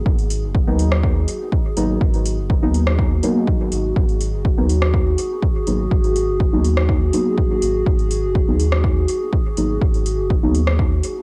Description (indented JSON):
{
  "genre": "dub techno",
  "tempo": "123 BPM",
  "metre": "4/4",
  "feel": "straight",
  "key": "G# minor",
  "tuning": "A4 = 442 Hz",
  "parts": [
    { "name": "warbly tape-like pad", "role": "sustained chords", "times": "0.0-11.2 s", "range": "F#4 to G#4", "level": "-27 LUFS", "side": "equal", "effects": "chorus, built-in reverb, phaser, sidechain pumping" },
    { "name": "deep mellow chord stab", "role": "stabs", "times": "0.0-10.6 s", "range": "F#3 to D#4", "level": "-26 LUFS", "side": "equal", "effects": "chorus, phaser, sidechain pumping, dub echo" },
    { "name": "warm sub bass", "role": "bass", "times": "0.1-11.0 s", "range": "F#1 to D#2", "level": "-23 LUFS", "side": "equal", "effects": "tube saturation, sidechain pumping" },
    { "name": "electronic kick drum", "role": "drums", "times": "0.1-10.9 s", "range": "none", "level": "-21 LUFS", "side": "equal", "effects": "cassette tape" },
    { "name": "soft vintage rhythm box", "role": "drums", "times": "0.2-11.1 s", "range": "hi-hat, rim click", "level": "-29 LUFS", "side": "equal", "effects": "overdrive, cassette tape, dub echo" }
  ],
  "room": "light reverb, digital ambience",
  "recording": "home recording on cassette",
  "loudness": "-18 LUFS",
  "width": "mono",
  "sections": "0.0-11.2 A section",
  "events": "filter sweep on synth stab 0.0-11.2",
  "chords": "0.0 G#m7"
}